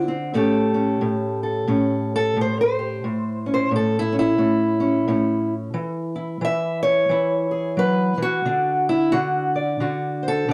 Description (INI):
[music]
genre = acoustic country blues, solo or duo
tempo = 89 BPM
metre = 4/4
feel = swing 60% on 8ths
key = A mixolydian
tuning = A4 = 440 Hz
[part]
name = fingerpicked steel-string acoustic guitar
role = solo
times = 0.0-10.5 s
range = A2 to E5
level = -22 LUFS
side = equal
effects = none
[sound]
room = moderate studio reverb, RT60 0.6 s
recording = dark, warm production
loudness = -21 LUFS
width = mono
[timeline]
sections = 0.0-10.5 A section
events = steel-string acoustic guitar solo 0.0-10.5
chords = 0.3 A7; 5.8 E5; 8.5 D7